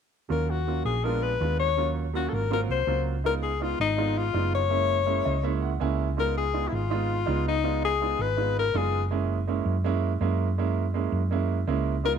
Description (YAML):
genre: Afro-Cuban jazz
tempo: 164 BPM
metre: 4/4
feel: straight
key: unclear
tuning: A4 = 440 Hz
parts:
  - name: clear alto saxophone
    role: melody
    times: 0.3-9.0, 12.1 s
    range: Eb4 to Db5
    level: -27 LUFS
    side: left 9 dB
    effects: none
  - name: warm baby grand piano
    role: accompaniment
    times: 0.3-12.2 s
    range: Gb3 to Ab5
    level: -30 LUFS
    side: right 12 dB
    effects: none
  - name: hollow-body short-scale fingered electric bass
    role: bass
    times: 0.3-12.2 s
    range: Gb1 to Gb2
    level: -28 LUFS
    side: right 1 dB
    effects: none
room: light reverb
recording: 1960s-style stereo with parts hard left and right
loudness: -24 LUFS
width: side -7 dB against mid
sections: 0.3-3.2 A section; 3.2-12.2 B section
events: grand piano fill 5.1-6.2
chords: 0.3 Ebm9; 1.0 Bb7b9; 1.8 Ebm9; 2.5 Ab13; 3.2 Db9; 4.7 Gb9; 6.2 Db9; 9.1 Gb9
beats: | 0.31 0.67 1.04 1.41 | 1.77 2.14 2.51 2.88 | 3.24 3.61 3.98 4.34 | 4.71 5.08 5.44 5.81 | 6.18 6.54 6.91 7.28 | 7.64 8.01 8.38 8.74 | 9.11 9.48 9.84 10.21 | 10.58 10.94 11.31 11.68 | 12.04